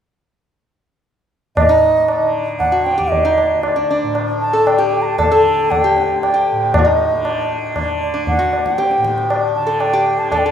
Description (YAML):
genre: indian classical, Hindustani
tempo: 117 BPM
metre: 5/4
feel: straight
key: unclear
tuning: A4 = 440 Hz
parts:
  - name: bright bansuri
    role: melody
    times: 1.6-10.5 s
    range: D5 to Bb5+22c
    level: -16 LUFS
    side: right 3 dB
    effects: tape echo
  - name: tanpura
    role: drone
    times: 1.6-10.5 s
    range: D2 to D3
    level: -26 LUFS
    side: equal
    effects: none
  - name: tabla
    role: percussion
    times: 1.6-10.5 s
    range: none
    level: -19 LUFS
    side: left 3 dB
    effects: none
  - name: metal-body resonator slide guitar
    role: second line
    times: 1.7-10.5 s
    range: D4 to A4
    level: -20 LUFS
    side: left 2 dB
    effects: none
room: wet plate reverb, RT60 3.5 s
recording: rough home demo mix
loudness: -13 LUFS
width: side -8 dB against mid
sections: 1.6-10.5 A section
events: none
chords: none